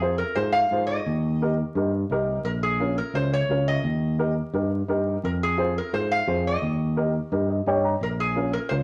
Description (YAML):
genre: latin, cumbia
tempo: 172 BPM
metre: 4/4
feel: straight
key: unclear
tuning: A4 = 442 Hz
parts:
  - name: metal-body resonator slide guitar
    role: melody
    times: 0.0-8.7 s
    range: Ab4 to F5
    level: -28 LUFS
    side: equal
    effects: none
  - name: dark upright piano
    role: accompaniment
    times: 0.0-8.8 s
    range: Db4 to Bb5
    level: -29 LUFS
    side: equal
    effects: none
  - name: fingered electric bass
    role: bass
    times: 0.0-8.8 s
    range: Bb1 to Ab2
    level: -28 LUFS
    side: equal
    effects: none
room: wet studio reverb, RT60 0.8 s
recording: vinyl crackle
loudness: -25 LUFS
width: mono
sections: 0.0-8.8 A section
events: upright piano fill 7.3-8.0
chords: 0.0 Fm; 1.1 Eb; 2.5 Bbm; 3.8 Eb; 5.2 Fm; 6.6 Eb; 8.0 Bbm